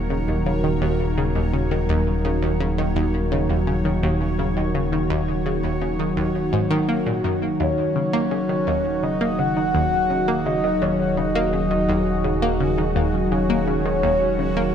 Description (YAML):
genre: ambient, sequencer-driven space music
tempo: 84 BPM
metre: 4/4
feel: straight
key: Eb minor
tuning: A4 = 440 Hz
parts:
  - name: lush unison pad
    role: sustained chords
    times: 0.0-14.7 s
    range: Eb3 to Db5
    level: -23 LUFS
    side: equal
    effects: chorus
  - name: round analog bass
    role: bass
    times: 0.0-14.7 s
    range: Eb1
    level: -27 LUFS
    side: equal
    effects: none
  - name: bubbling stepped-filter texture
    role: texture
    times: 0.0-14.7 s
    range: Gb4 to Db5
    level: -38 LUFS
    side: equal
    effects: chorus, built-in reverb
  - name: analog pluck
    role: riff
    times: 0.1-14.6 s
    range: Eb2 to Bb3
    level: -25 LUFS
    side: equal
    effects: chorus, phaser, tape echo
  - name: breathy flute-like synth lead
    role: melody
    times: 7.6-14.7 s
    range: Db5 to Gb5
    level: -24 LUFS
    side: left 1 dB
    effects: lush chorus, tape echo
room: moderate plate reverb, RT60 3.1 s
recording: echo-heavy mix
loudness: -19 LUFS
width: side -8 dB against mid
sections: 0.0-14.7 A section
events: none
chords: 0.0 Ebm